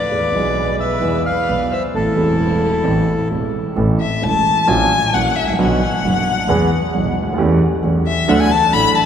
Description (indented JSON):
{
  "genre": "tango",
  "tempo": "133 BPM",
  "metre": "4/4",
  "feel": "rubato",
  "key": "A harmonic minor, A major from 3.8 s",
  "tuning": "A4 = 440 Hz",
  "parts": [
    { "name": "bandoneon", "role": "melody", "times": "0.0-3.3 s", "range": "A4 to F5", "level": "-23 LUFS", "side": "equal", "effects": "none" },
    { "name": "warm violin", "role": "second line", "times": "0.0-9.1 s", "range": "E4 to B5", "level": "-19 LUFS", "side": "left 5 dB", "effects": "none" },
    { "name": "warm grand piano", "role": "accompaniment", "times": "0.1-8.9 s", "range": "E1 to A4", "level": "-18 LUFS", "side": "right 2 dB", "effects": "none" },
    { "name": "rich double bass", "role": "bass", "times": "0.1-8.9 s", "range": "E1 to E2", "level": "-21 LUFS", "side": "equal", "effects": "none" }
  ],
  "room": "wet cathedral reverb, RT60 6.5 s",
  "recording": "recorded in a church or concert hall",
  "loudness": "-14 LUFS",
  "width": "side -8 dB against mid",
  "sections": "0.0-3.8 A section; 3.8-9.1 B section",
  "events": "violin solo 3.8-9.1",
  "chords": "0.1 E; 1.9 Am; 3.8 A; 4.7 F#7/A#; 5.6 Bm; 6.5 E; 7.4 A7/E; 8.3 D"
}